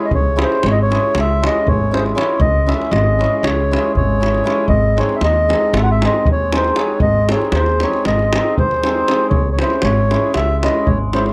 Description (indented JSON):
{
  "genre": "balkan folk, Balkan wedding band",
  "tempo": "235 BPM (eighths)",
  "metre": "9/8",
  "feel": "straight",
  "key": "C# harmonic minor",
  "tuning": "A4 = 441 Hz",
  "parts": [
    { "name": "mellow accordion", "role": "melody", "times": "0.0-11.2 s", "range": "B#4 to F#5", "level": "-20 LUFS", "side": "equal", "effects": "none" },
    { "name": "hammered dulcimer", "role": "accompaniment", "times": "0.0-11.3 s", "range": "G#3 to G#4", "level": "-23 LUFS", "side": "equal", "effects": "none" },
    { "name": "upright bass", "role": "bass", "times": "0.1-11.3 s", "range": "G#1 to D#2", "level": "-20 LUFS", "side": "equal", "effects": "none" },
    { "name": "davul", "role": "percussion", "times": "0.1-11.3 s", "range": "none", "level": "-23 LUFS", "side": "equal", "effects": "none" }
  ],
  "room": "little or no reverb",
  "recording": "dry, close 1970s-style studio recording",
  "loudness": "-16 LUFS",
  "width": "mono",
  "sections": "0.1-11.3 A section",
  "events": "none",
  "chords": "0.1 C#m; 4.7 G#; 9.3 C#m",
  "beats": "| 0.11 0.37 0.62 0.88 1.13 1.39 1.64 1.90 2.15 | 2.40 2.66 2.91 3.17 3.42 3.68 3.93 4.19 4.44 | 4.70 4.95 5.21 5.46 5.72 5.98 6.23 6.49 6.74 | 7.00 7.25 7.51 7.76 8.02 8.28 8.53 8.79 9.04 | 9.30 9.56 9.81 10.07 10.32 10.58 10.84 11.09"
}